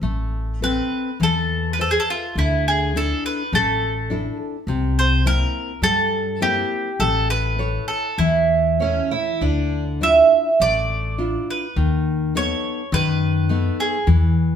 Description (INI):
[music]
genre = fado-style ballad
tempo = 103 BPM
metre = 4/4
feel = rubato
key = unclear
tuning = A4 = 440 Hz
[part]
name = nylon-string guitar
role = accompaniment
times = 0.0-14.6 s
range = C3 to C#5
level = -24 LUFS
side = left 3 dB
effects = none
[part]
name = upright bass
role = bass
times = 0.0-14.6 s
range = A1 to G2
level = -23 LUFS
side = left 1 dB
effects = none
[part]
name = mandolin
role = melody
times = 0.6-14.1 s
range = E4 to E5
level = -20 LUFS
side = right 3 dB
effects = none
[part]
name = fingerpicked twelve-string acoustic guitar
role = second line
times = 8.8-9.8 s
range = C#4 to E4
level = -24 LUFS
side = right 3 dB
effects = none
[sound]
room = wet stone room reverb, RT60 1.1 s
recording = band playing live in one room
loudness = -18 LUFS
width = side -8 dB against mid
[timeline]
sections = 0.0-14.6 A section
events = none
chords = 0.0 Amadd9; 2.4 Dsus2; 4.7 C7; 7.0 A; 9.4 Dmadd9; 11.8 B7/D#